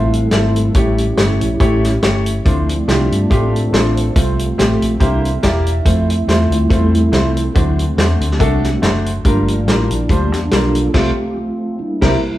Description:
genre	uptempo gospel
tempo	141 BPM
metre	4/4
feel	swing 55% on 8ths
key	F major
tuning	A4 = 440 Hz
part	clear baby grand piano	accompaniment	0.0-12.2 s	G2 to E5	-19 LUFS	left 1 dB	none
part	dark French horn section	sustained chords	0.0-12.4 s	C3 to E5	-29 LUFS	right 2 dB	none
part	mellow tonewheel organ	sustained chords	0.0-12.4 s	F3 to C5	-20 LUFS	right 1 dB	fast rotary speaker, chorus vibrato
part	vintage muted fingered electric bass	bass	0.0-12.2 s	E1 to A2	-17 LUFS	equal	none
part	warm soul drum kit	drums	0.1-12.1 s	crash cymbal, hi-hat, kick drum, snare drum	-17 LUFS	equal	none
room	wet large studio reverb, RT60 1.3 s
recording	band playing live in one room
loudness	-13 LUFS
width	side -14 dB against mid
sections	0.0-12.4 A section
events	tonewheel organ solo 0.0-12.4; band accent 10.9-12.4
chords	0.0 Fmaj7; 0.8 A7; 2.5 Dm7; 4.2 F/C; 5.0 C7; 5.9 Fmaj7; 7.6 D7; 9.2 Gm7; 10.9 F/C; 11.8 C7

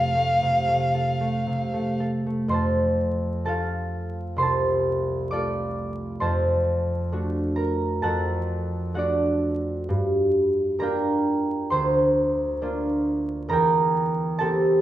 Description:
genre	classical, romantic duo for violin and harp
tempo	65 BPM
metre	4/4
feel	uneven beats, rubato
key	F major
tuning	A4 = 440 Hz
part	rich violin	melody	0.0-2.0 s	F5	-23 LUFS	equal	none
part	concert harp	accompaniment	0.0-14.8 s	C2 to D6	-22 LUFS	right 1 dB	none
room	wet recital hall reverb, RT60 1.3 s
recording	minimal, uncompressed stereo recording, vinyl crackle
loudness	-22 LUFS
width	side -13 dB against mid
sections	0.0-2.5 A section; 2.5-14.8 B section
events	none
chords	0.0 F; 6.2 D7/F; 9.9 Gm7; 13.5 C7/E

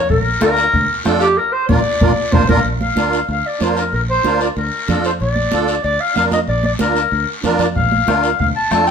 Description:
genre	latin, cumbia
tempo	188 BPM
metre	4/4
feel	straight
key	Bb major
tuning	A4 = 440 Hz
part	warm clarinet	melody	0.0-8.9 s	G4 to A5	-17 LUFS	left 2 dB	none
part	fingered electric bass	bass	0.0-8.9 s	Bb1 to F2	-22 LUFS	equal	none
part	bombo	percussion	0.1-2.6, 7.8-8.9 s	none	-19 LUFS	left 1 dB	none
part	congas	percussion	0.1-8.9 s	none	-23 LUFS	right 2 dB	none
part	guiro	percussion	0.1-8.9 s	none	-30 LUFS	left 4 dB	none
part	musette accordion	accompaniment	0.4-8.9 s	D4 to Bb4	-20 LUFS	right 4 dB	none
room	moderate stone room reverb, RT60 1.0 s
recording	band playing live in one room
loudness	-14 LUFS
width	side -7 dB against mid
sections	0.0-2.7 A section; 2.7-8.9 B section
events	clarinet solo 0.0-2.7; band accent 1.4-2.7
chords	0.0 Bb

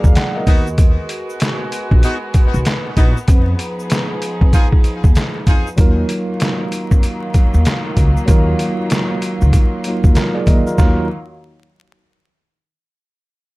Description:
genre	hip hop, boom-bap hip-hop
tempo	96 BPM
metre	4/4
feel	swing 63% on 16ths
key	Eb minor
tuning	A4 = 444 Hz
part	bright tine electric piano	accompaniment	0.0-11.1 s	Gb3 to Gb5	-22 LUFS	right 1 dB	medium stereo tremolo, cassette tape
part	warm studio string section	sustained chords	0.0-11.1 s	Eb3 to F5	-26 LUFS	equal	none
part	upright bass	bass	0.0-11.1 s	Bb1 to F2	-16 LUFS	equal	none
part	trip hop sampler-style drum kit	drums	0.0-11.0 s	handclaps, hi-hat, kick drum, snare drum	-14 LUFS	equal	none
part	tube shaker	percussion	0.0-11.1 s	none	-39 LUFS	left 4 dB	none
part	warm horn section	stabs	0.5-5.7 s	Cb4 to Ab4	-25 LUFS	left 1 dB	ping-pong delay
room	little or no reverb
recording	dark, warm production, vinyl crackle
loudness	-13 LUFS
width	side -21 dB against mid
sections	0.0-5.8 A section; 5.8-10.8 B section; 10.8-13.3 C section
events	none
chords	0.5 Abm9/Eb; 3.3 Fm7b5; 5.8 Ebmadd9

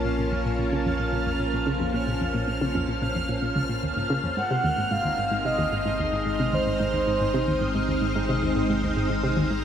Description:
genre	ambient, sequencer-driven space music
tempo	111 BPM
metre	4/4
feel	straight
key	unclear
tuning	A4 = 441 Hz
part	string machine, full ensemble	sustained chords	0.0-9.6 s	Ab3 to A5	-27 LUFS	equal	ensemble chorus, shimmer reverb
part	analog pluck	riff	0.0-9.6 s	Db2 to Db3	-28 LUFS	equal	chorus, analog delay
part	warm sub bass	bass	0.0-9.6 s	Ab1 to Bb1	-32 LUFS	equal	none
part	bubbling stepped-filter texture	texture	0.0-9.6 s	F6	-32 LUFS	equal	chorus, built-in reverb, shimmer reverb
part	breathy flute-like synth lead	melody	4.4-8.4 s	C5 to Gb5	-29 LUFS	right 1 dB	chorus, tremolo, shimmer reverb, analog delay
room	wet plate reverb, RT60 3.0 s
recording	none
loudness	-23 LUFS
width	side -9 dB against mid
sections	0.0-9.6 A section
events	filter sweep on synth arpeggio sound 0.0-9.6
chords	0.0 Bbm; 4.4 Ab

